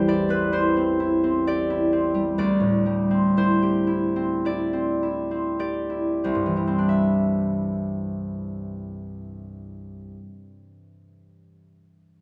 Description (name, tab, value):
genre	classical, solo harp piece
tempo	43-66 BPM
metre	4/4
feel	rubato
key	C major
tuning	A4 = 440 Hz
part	concert harp	solo	0.0-10.5 s	A1 to E5	-24 LUFS	equal	none
room	moderate stone room reverb, RT60 1.0 s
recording	none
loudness	-23 LUFS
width	mono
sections	0.0-6.9 A section; 6.9-11.6 B section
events	slowing down 0.0-6.9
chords	0.0 Am9; 2.4 D9sus4; 6.9 Cadd9